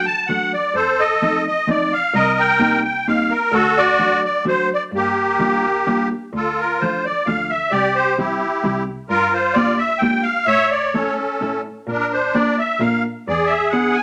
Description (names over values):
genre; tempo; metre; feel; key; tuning
musette waltz; 129 BPM; 3/4; straight; G minor, D minor from 6.3 s; A4 = 439 Hz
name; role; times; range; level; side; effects
musette accordion; melody; 0.0-14.0 s; Bb3 to A5; -19 LUFS; equal; none
hollow-body jazz guitar; accompaniment; 0.0-14.0 s; F3 to Bb4; -24 LUFS; equal; none
warm cello; bass; 0.0-13.9 s; C2 to Bb2; -30 LUFS; equal; none
room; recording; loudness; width
wet studio reverb, RT60 0.8 s; none; -18 LUFS; mono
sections
0.0-6.3 A section; 6.3-14.0 B section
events
none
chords
0.0 D; 0.7 F7; 2.1 Cm7; 3.5 D; 4.9 Gm7; 6.3 Dm; 7.7 C; 9.1 Gm7; 10.5 A; 11.9 Bb; 13.3 E7